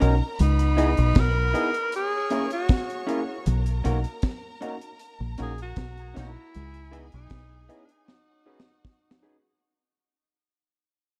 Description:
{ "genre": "lovers rock reggae", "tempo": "78 BPM", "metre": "4/4", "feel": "straight", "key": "B major", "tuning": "A4 = 436 Hz", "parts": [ { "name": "clear studio violin section", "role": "second line", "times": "0.0-9.6 s", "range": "B3 to C#6", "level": "-42 LUFS", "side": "equal", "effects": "dub echo" }, { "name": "barky tine electric piano", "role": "accompaniment", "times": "0.0-9.5 s", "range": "A#3 to A#4", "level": "-32 LUFS", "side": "equal", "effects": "overdrive" }, { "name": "electric guitar through a small old amp", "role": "stabs", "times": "0.0-9.4 s", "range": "C#4 to D#5", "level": "-34 LUFS", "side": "equal", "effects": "none" }, { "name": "deep dub fingered electric bass", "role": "bass", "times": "0.0-7.7 s", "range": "A#1 to C#2", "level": "-26 LUFS", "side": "equal", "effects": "none" }, { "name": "deep reggae drum kit", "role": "drums", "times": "0.0-9.3 s", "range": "hi-hat, kick drum, snare drum", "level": "-26 LUFS", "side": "equal", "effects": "none" }, { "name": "breathy tenor saxophone", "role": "melody", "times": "0.4-9.2 s", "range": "C#4 to A#4", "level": "-32 LUFS", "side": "equal", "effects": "tape echo" } ], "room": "light reverb", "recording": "dark, warm production", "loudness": "-24 LUFS", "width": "mono", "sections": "0.0-9.6 A section", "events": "fade-out 0.0-9.6; drum fill 8.1-9.6", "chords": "0.4 C#m9; 1.9 A#m7b5; 3.5 Bmaj9; 6.5 C#m9; 8.1 B6" }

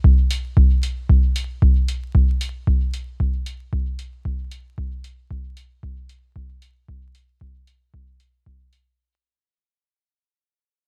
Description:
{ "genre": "techno", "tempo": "114 BPM", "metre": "4/4", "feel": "straight", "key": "none", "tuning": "none", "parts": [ { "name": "electronic kick drum", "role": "drums", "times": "0.0-8.6 s", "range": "none", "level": "-20 LUFS", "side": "equal", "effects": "none" }, { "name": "electronic hi-hat", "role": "drums", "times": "0.3-8.8 s", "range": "none", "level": "-33 LUFS", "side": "equal", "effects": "none" } ], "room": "little or no reverb", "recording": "vinyl crackle", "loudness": "-21 LUFS", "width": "mono", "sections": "0.0-9.0 A section", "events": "fade-out 0.0-9.0", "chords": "none" }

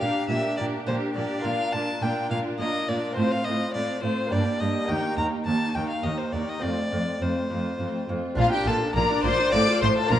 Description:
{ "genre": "classical, baroque-style concerto movement with solo episodes", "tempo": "104 BPM", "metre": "3/4", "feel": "straight", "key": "Bb major", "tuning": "A4 = 440 Hz", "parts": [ { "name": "clear violin", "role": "melody", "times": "0.0-10.2 s", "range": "F4 to Bb5", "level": "-28 LUFS", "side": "left 2 dB", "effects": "none" }, { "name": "rich chamber violin section", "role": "melody", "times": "0.0-10.2 s", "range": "F4 to D6", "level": "-32 LUFS", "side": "left 5 dB", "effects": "none" }, { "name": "rich chamber violin section", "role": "second line", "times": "0.0-10.2 s", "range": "C4 to F5", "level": "-32 LUFS", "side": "left 2 dB", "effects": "none" }, { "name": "lute", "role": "accompaniment", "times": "0.0-10.2 s", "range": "Eb2 to C5", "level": "-34 LUFS", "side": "right 1 dB", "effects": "none" }, { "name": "rich chamber viola section", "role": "accompaniment", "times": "0.0-10.2 s", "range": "A3 to A4", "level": "-31 LUFS", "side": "right 2 dB", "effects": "none" }, { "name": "warm symphonic cello section", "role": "bass", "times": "0.0-10.2 s", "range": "Eb2 to Bb2", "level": "-29 LUFS", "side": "right 2 dB", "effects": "none" }, { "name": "clear symphonic double bass section", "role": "bass", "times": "8.4-10.2 s", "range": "A1 to Bb1", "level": "-29 LUFS", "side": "right 2 dB", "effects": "none" } ], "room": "wet recital hall reverb, RT60 1.6 s", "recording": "nothing above 10.3 kHz", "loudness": "-23 LUFS", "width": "side -11 dB against mid", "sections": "0.0-8.4 A section; 8.4-10.2 B section", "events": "none", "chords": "0.0 Gm/Bb; 1.4 Bb; 3.2 F/A; 4.3 Gm; 4.9 Eb; 6.6 F; 8.4 Bb; 9.5 F/A" }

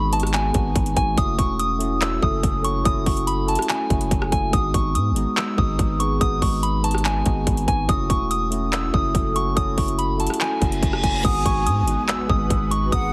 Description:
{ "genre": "hip hop, trap", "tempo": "143 BPM", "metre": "4/4", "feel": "half-time", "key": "G# phrygian", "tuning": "A4 = 440 Hz", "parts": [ { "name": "soft synth bell", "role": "melody", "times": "0.0-13.1 s", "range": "G#5 to E6", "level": "-27 LUFS", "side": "equal", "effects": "chorus, low-pass filter, delay" }, { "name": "mellow tine electric piano", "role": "accompaniment", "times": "0.0-13.1 s", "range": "G#3 to A4", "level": "-29 LUFS", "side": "equal", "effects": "phaser, low-pass filter" }, { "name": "long sustained 808-style bass", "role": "bass", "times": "0.0-13.1 s", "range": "E1 to G#2", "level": "-27 LUFS", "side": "equal", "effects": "none" }, { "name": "trap drum kit", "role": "drums", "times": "0.1-13.0 s", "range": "crash cymbal, handclaps, hi-hat, kick drum, rim click", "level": "-26 LUFS", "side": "equal", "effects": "overdrive" }, { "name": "reverse cymbal and impact", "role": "sound effects", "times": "10.6-12.9 s", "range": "none", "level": "-35 LUFS", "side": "equal", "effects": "none" }, { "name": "breathy concert flute", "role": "second line", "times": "11.2-13.1 s", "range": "F#5 to G#5", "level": "-31 LUFS", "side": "equal", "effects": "delay" }, { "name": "ethereal airy pad", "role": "sustained chords", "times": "11.6-13.1 s", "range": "G#3 to B4", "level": "-35 LUFS", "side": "equal", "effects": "ensemble chorus, built-in reverb" } ], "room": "little or no reverb", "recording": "heavily compressed radio sound", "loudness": "-21 LUFS", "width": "mono", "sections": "0.0-11.2 A section; 11.2-13.1 B section", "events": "reverse cymbal 10.6-11.2; impact 11.2-12.9", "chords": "0.0 G#m7; 1.2 F#m7; 4.5 G#m7; 7.9 F#m7; 11.2 G#m7" }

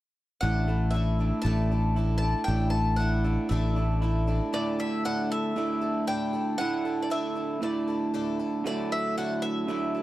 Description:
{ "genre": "rock", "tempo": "117 BPM", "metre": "4/4", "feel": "straight", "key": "unclear", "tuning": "A4 = 439 Hz", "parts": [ { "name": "bowl-back mandolin", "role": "melody", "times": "0.4-10.0 s", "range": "D5 to A5", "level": "-32 LUFS", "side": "left 1 dB", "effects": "none" }, { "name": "picked twelve-string acoustic guitar", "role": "accompaniment", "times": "0.4-10.0 s", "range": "A2 to A4", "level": "-36 LUFS", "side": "left 4 dB", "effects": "none" }, { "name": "electric guitar through a small old amp", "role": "riff", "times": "0.4-10.0 s", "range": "A2 to E4", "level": "-29 LUFS", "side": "right 2 dB", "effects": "none" }, { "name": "fingered electric bass", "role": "bass", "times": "0.4-4.4 s", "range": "A1", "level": "-25 LUFS", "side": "left 1 dB", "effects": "none" } ], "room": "light reverb", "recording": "dry, close 1970s-style studio recording", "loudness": "-25 LUFS", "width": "side -15 dB against mid", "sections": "0.4-4.5 A section; 4.5-10.0 B section", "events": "none", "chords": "0.4 Asus4; 8.7 Dadd9" }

